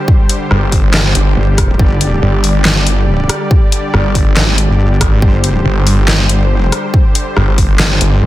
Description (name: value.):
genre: heavy wobble dubstep.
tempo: 140 BPM.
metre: 4/4.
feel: half-time.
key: unclear.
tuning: A4 = 440 Hz.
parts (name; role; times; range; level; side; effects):
supersaw chords; sustained chords; 0.0-8.3 s; D3 to D5; -19 LUFS; equal; sidechain pumping, low-pass filter.
electronic kick drum; drums; 0.1-7.7 s; none; -11 LUFS; equal; none.
dubstep drum kit; drums; 0.3-8.1 s; handclaps, hi-hat, rim click, snare drum; -16 LUFS; left 1 dB; soft clipping on snare.
snarling distorted saw bass; bass; 0.5-8.2 s; G1 to Ab1; -12 LUFS; equal; distortion, overdrive.
wobble bass; bass; 0.9-8.3 s; G1 to Ab1; -12 LUFS; equal; chorus, overdrive.
room: light reverb, digital ambience.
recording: dense, heavily limited modern master.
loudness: -9 LUFS.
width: side -15 dB against mid.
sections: 0.0-8.3 A section.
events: none.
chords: 0.0 G5.